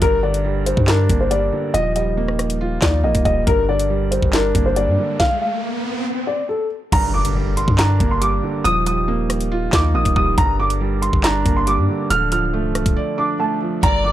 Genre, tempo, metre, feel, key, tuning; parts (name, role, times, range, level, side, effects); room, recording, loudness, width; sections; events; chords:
hip hop, drill; 139 BPM; 4/4; half-time; G minor; A4 = 438 Hz
dark concert grand piano; melody; 0.0-14.1 s; A4 to F6; -20 LUFS; equal
felt-muted upright piano; accompaniment; 0.0-14.1 s; G2 to D5; -23 LUFS; right 4 dB
pipe organ, flutes; sustained chords; 0.0-14.1 s; F3 to Bb4; -30 LUFS; equal
long sustained 808-style bass; bass; 0.0-14.1 s; C1 to G2; -20 LUFS; equal; tube saturation
drill drum kit; drums; 0.0-13.9 s; crash cymbal, handclaps, hi-hat, kick drum, rim click, snare drum; -20 LUFS; equal
riser and impact; sound effects; 4.7-8.7 s; -28 LUFS; equal
warm studio violin section; second line; 13.8-14.1 s; D5; -21 LUFS; left 2 dB
small room reverb; dry, gritty hardware recording; -16 LUFS; side -12 dB against mid
0.0-6.9 A section; 6.9-14.1 B section
riser 4.7-6.9; stop 5.2-6.9; impact 6.9-8.7; drums muted 13.0-13.8
0.0 Gm; 1.7 Ebadd9; 3.5 Gm; 5.2 N.C.; 6.9 Gm; 8.7 Ebadd9; 10.4 Gm; 12.1 Dm